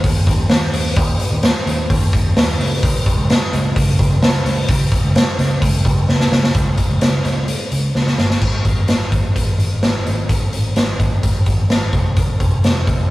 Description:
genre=jangly indie pop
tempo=129 BPM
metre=4/4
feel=straight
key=unclear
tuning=A4 = 440 Hz
part: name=vintage muted picked electric bass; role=bass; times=0.0-13.1 s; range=F1 to Eb2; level=-19 LUFS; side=equal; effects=none
part: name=raw garage drum kit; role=drums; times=0.0-13.0 s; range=crash cymbal, hi-hat, kick drum, snare drum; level=-15 LUFS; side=equal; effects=none
room=wet booth ambience, RT60 0.2 s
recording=rough rehearsal-room recording, vinyl crackle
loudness=-14 LUFS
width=side -18 dB against mid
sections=0.0-6.5 A section; 6.5-8.4 B section; 8.4-13.1 C section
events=drum fill 6.1-6.5, 7.9-8.4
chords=none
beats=0.04 0.50 | 0.97 1.43 1.90 2.36 | 2.83 3.29 3.75 4.22 | 4.68 5.15 5.62 6.08 | 6.55 7.01 7.48 7.95 | 8.42 8.89 9.36 9.82 | 10.29 10.76 11.23 11.70 | 12.17 12.64

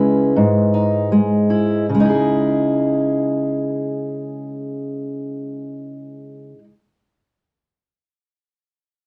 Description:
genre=folk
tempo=73-85 BPM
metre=4/4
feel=straight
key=C# minor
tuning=A4 = 441 Hz
part: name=fingerpicked steel-string acoustic guitar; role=accompaniment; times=0.0-6.7 s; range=G#2 to B4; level=-19 LUFS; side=equal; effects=none
room=wet small room reverb, RT60 0.5 s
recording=none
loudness=-18 LUFS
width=mono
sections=0.0-1.9 A section; 1.9-5.2 B section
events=slowing down 0.0-1.9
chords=0.0 C#madd9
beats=0.36 1.11 | 1.90 2.71 3.53 4.35

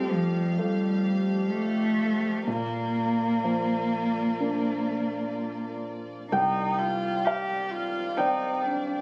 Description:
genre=neoclassical piano and strings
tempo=61-66 BPM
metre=4/4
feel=rubato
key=Bb major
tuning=A4 = 435 Hz
part: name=dark cello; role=second line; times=0.0-9.0 s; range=F3 to G4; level=-29 LUFS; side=equal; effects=none
part: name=warm baby grand piano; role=accompaniment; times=0.0-9.0 s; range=C2 to G5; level=-32 LUFS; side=equal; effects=none
part: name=warm chamber string section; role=sustained chords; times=0.0-9.0 s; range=Eb3 to F5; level=-41 LUFS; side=equal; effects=none
room=light reverb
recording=recorded on a phone in the room, studio reverb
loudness=-27 LUFS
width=mono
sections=0.0-6.3 A section; 6.3-9.0 A section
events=none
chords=0.0 Fadd9; 2.5 Bb; 6.3 Cmadd9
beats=0.58 1.50 | 2.46 3.44 4.39 5.34 | 6.31 7.25 8.16

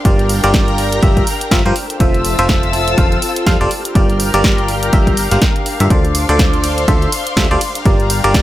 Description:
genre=piano house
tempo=123 BPM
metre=4/4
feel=swing 58% on 16ths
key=G dorian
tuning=A4 = 440 Hz
part: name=analog string pad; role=sustained chords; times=0.0-8.4 s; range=F4 to F6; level=-24 LUFS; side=left 2 dB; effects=ensemble chorus, sidechain pumping
part: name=dark studio string section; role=texture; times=0.0-8.4 s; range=C4 to E6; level=-23 LUFS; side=left 2 dB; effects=sidechain pumping
part: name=barking FM electric piano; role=riff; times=0.1-8.4 s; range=D3 to F5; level=-17 LUFS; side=equal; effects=chorus, tremolo, sidechain pumping, dub echo
part: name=plucky analog bass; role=bass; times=0.1-8.4 s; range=F1 to G2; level=-18 LUFS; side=equal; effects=sidechain pumping
part: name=electronic kick drum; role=drums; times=0.1-8.4 s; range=none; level=-14 LUFS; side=equal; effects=studio reverb
part: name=punchy analog drum machine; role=drums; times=0.1-8.4 s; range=hi-hat, ride cymbal, snare drum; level=-20 LUFS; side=equal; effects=studio reverb
room=little or no reverb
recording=none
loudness=-11 LUFS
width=side -14 dB against mid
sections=0.0-8.4 A section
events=none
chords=0.0 Gm7; 1.8 Fmaj7; 3.7 Gm7; 5.9 Dm7; 7.6 Gm7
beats=| 0.05 0.54 1.03 1.51 | 2.00 2.49 2.98 3.46 | 3.95 4.44 4.93 5.42 | 5.90 6.39 6.88 7.37 | 7.86 8.34

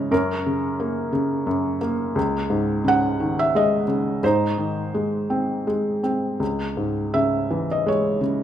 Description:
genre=classical, lyrical solo piano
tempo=80-90 BPM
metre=3/4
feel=rubato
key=C# minor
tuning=A4 = 440 Hz
part: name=felt-muted upright piano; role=solo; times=0.0-8.4 s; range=C#2 to F#5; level=-20 LUFS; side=equal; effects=none
room=moderate recital hall reverb, RT60 1.6 s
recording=minimal, uncompressed stereo recording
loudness=-20 LUFS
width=side -10 dB against mid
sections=0.0-8.4 A section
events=none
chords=0.1 F#; 2.2 C#sus2; 4.2 G#; 6.4 C#m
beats=| 0.12 0.80 1.47 | 2.16 2.86 3.55 | 4.23 4.94 5.67 | 6.41 7.15 7.87

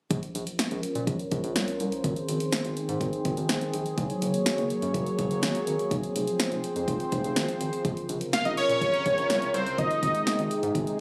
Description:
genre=synth-pop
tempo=124 BPM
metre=4/4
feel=straight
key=Bb minor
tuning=A4 = 441 Hz
part: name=sweeping resonant pad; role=sustained chords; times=0.1-11.0 s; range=C3 to Db5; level=-32 LUFS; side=equal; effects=chorus, low-pass filter
part: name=round analog bass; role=bass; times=0.1-10.8 s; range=F1 to Bb2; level=-34 LUFS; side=equal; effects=none
part: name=deep house drum kit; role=drums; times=0.1-11.0 s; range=hi-hat, kick drum, snare drum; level=-33 LUFS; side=equal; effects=none
part: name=fat analog lead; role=melody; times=8.3-10.5 s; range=C5 to F5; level=-28 LUFS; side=equal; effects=chorus, slapback echo
room=moderate scoring stage reverb, RT60 1.4 s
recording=recorded on a phone in the room, club reverb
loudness=-28 LUFS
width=mono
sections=0.1-7.8 A section; 7.8-11.0 B section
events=filter sweep on analog synth pad 0.1-7.8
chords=0.1 Bbmadd9; 2.0 Ab; 4.0 Gbadd9; 5.9 Fm; 7.8 Bbmadd9; 9.8 Ab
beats=| 0.11 0.59 1.07 1.56 | 2.04 2.53 3.01 3.49 | 3.98 4.46 4.95 5.43 | 5.91 6.40 6.88 7.36 | 7.85 8.33 8.82 9.30 | 9.78 10.27 10.75

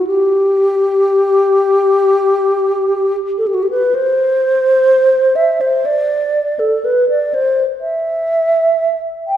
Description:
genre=classical, free, expressive piece for unaccompanied alto flute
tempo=59-66 BPM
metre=4/4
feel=rubato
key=G major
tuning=A4 = 440 Hz
part: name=mellow hollow alto flute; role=solo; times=0.0-9.4 s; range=F#4 to G5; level=-12 LUFS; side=equal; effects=none
room=wet concert hall reverb, RT60 1.8 s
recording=heard from further back in the room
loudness=-12 LUFS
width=side -11 dB against mid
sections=0.0-9.4 A section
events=none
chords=none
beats=| 0.07 1.09 2.08 3.02 | 3.94 4.89 5.85 6.84 | 7.80 8.78

